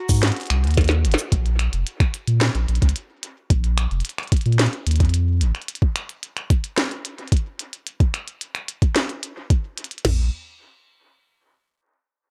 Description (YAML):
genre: IDM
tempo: 110 BPM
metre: 4/4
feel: straight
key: Bb minor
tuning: A4 = 438 Hz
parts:
  - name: electric guitar at the edge of break-up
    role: melody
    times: 0.0-0.7 s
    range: Gb4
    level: -39 LUFS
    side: equal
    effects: vintage 12-bit sampler grit, analog delay
  - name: warm sub bass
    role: bass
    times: 0.1-5.5, 10.0-10.3 s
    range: F1 to Bb2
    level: -21 LUFS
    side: equal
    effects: none
  - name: glitchy drum kit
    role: drums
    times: 0.1-10.2 s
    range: crash cymbal, kick drum, snare drum, toms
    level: -20 LUFS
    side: equal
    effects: overdrive
  - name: glitchy drum kit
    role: drums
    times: 0.1-10.0 s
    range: cabasa, finger snaps, hi-hat, snare drum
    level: -27 LUFS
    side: equal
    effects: dub echo
room: digital ambience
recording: echo-heavy mix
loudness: -21 LUFS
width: mono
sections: 0.0-1.3 A section; 1.3-10.0 B section; 10.0-12.2 C section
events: drum fill 0.8-1.3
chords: 0.0 Ab7; 1.3 Bb5; 5.7 N.C.